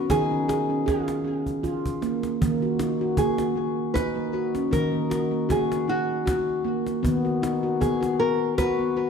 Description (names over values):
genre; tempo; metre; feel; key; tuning
world meditative, meditative tuned percussion; 78 BPM; 3/4; swing 54% on 16ths; Eb minor; A4 = 441 Hz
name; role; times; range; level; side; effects
handpan; arpeggios; 0.0-9.1 s; Eb3 to Ab4; -24 LUFS; equal; none
nylon-string guitar; melody; 0.1-9.1 s; F4 to Cb5; -28 LUFS; right 1 dB; ping-pong delay
cajon; percussion; 0.1-8.8 s; none; -29 LUFS; equal; none
room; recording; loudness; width
wet scoring stage reverb, RT60 1.6 s, studio reverb; dark, warm production; -22 LUFS; side -6 dB against mid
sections
0.0-9.1 A section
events
drum fill 1.4-2.4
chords
0.1 Db/Eb; 2.4 Ebm; 7.0 B/D#